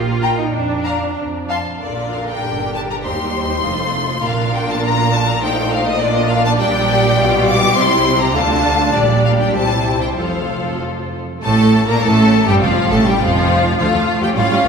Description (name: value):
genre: quick classical-period movement for string orchestra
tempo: 92-104 BPM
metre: 2/4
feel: rubato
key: Bb major, F major from 6.6 s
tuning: A4 = 440 Hz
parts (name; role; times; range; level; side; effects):
- rich studio viola section; accompaniment; 0.0-14.7 s; D3 to F4; -20 LUFS; right 1 dB; none
- bright studio cello section; bass; 0.0-14.7 s; D2 to F4; -21 LUFS; right 2 dB; none
- rich studio double bass section; bass; 0.0-14.7 s; F1 to F2; -21 LUFS; right 3 dB; none
- clear studio violin section; melody; 0.2-14.7 s; D5 to D6; -20 LUFS; left 3 dB; none
- rich studio violin section; second line; 0.2-14.7 s; F4 to Bb5; -20 LUFS; left 3 dB; none
room: wet concert hall reverb, RT60 2.3 s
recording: minimal, uncompressed stereo recording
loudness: -14 LUFS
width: side -6 dB against mid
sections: 0.0-1.8 A section; 1.8-11.4 B section; 11.4-14.7 C section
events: none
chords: 0.0 Eb; 0.5 Bb/F; 1.8 Bb; 2.4 Gm; 3.0 Cm/Eb; 3.6 F7; 4.2 Bb; 5.4 F7/Bb; 6.0 Bb; 6.6 Gm/Bb; 7.2 G7/B; 7.8 C; 8.4 Dm; 8.9 Gm/Bb; 9.6 C; 10.2 F; 11.4 N.C.; 12.0 Gsus2/A; 12.6 F; 13.8 Dm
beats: | 0.54 1.18 | 1.82 2.44 | 3.04 3.64 | 4.25 4.84 | 5.43 6.02 | 6.60 7.19 | 7.77 8.35 | 8.95 9.55 | 10.18 10.81 | 11.44 12.03 | 12.62 13.21 | 13.79 14.37